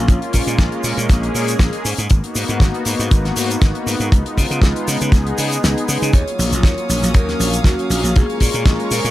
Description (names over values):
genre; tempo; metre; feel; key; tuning
nu-disco, nu disco; 119 BPM; 4/4; swing 53% on 16ths; Eb minor; A4 = 440 Hz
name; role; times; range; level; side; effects
warm analog pad; accompaniment; 0.0-9.1 s; Gb3 to F5; -22 LUFS; left 1 dB; chorus, cassette tape, sidechain pumping, tape echo
slap bass; bass; 0.0-9.1 s; Ab1 to Db3; -20 LUFS; equal; none
damped 70s drum kit; drums; 0.1-9.1 s; hi-hat, shaker, snare drum; -23 LUFS; left 1 dB; none
kick drum; drums; 0.1-8.8 s; none; -12 LUFS; equal; none
vibraphone with medium mallets; melody; 6.1-9.1 s; Gb4 to Db5; -24 LUFS; equal; tape echo
clear studio violin section; sustained chords; 6.1-9.1 s; Db5 to Eb6; -28 LUFS; right 1 dB; sidechain pumping
room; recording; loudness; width
studio reverb; none; -14 LUFS; side -15 dB against mid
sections
0.0-9.1 A section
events
kick drops out 5.6-6.1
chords
0.1 Bbm7; 1.9 Abm9; 4.1 Db9; 6.1 Ebm9; 8.2 Bbm7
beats
| 0.09 0.59 1.09 1.60 | 2.10 2.61 3.11 3.61 | 4.12 4.62 5.13 5.63 | 6.13 6.64 7.14 7.65 | 8.15 8.66